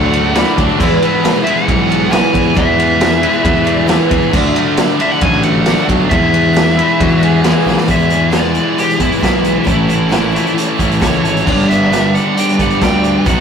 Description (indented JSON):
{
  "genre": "classic rock",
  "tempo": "135 BPM",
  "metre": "4/4",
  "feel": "straight",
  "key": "E mixolydian",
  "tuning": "A4 = 440 Hz",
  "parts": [
    { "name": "dark smooth lead guitar", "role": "melody", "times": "0.0-13.4 s", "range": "E4 to G#5", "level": "-17 LUFS", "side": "equal", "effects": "overdrive" },
    { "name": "picked twelve-string acoustic guitar", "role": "accompaniment", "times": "0.0-13.4 s", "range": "E2 to G#4", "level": "-24 LUFS", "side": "right 3 dB", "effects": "none" },
    { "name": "distorted electric guitar", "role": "riff", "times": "0.0-13.4 s", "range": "G2 to F#4", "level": "-16 LUFS", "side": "left 4 dB", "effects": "distortion" },
    { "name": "tight distorted guitar", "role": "riff", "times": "0.0-13.4 s", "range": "E2 to A4", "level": "-19 LUFS", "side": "right 7 dB", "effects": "distortion" },
    { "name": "fuzz picked electric bass", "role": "bass", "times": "0.0-13.4 s", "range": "G1 to E2", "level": "-17 LUFS", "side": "equal", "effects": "overdrive" },
    { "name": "raw garage drum kit", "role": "drums", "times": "0.1-13.4 s", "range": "crash cymbal, hi-hat, kick drum, ride cymbal, snare drum", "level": "-17 LUFS", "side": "equal", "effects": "none" },
    { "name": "overdriven slide guitar", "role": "second line", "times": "0.4-7.8 s", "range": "D4 to E5", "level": "-22 LUFS", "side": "left 1 dB", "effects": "none" }
  ],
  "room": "moderate stone room reverb, RT60 1.1 s",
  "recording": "rough rehearsal-room recording, warm saturation",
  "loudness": "-10 LUFS",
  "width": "side -7 dB against mid",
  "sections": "0.0-7.9 A section; 7.9-13.4 B section",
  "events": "drum fill 7.7; lead electric guitar solo 7.9-13.4",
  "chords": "0.0 Dadd9; 0.8 E; 4.3 Dadd9; 6.1 E; 9.7 A; 11.5 G",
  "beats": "0.36 | 0.80 1.24 1.68 2.13 | 2.57 3.01 3.46 3.90 | 4.34 4.78 5.23 5.67 | 6.11 6.56 7.00 7.45 | 7.89 8.34 8.78 9.23 | 9.68 10.12 10.57 11.02 | 11.47 11.92 12.37 12.82 | 13.27"
}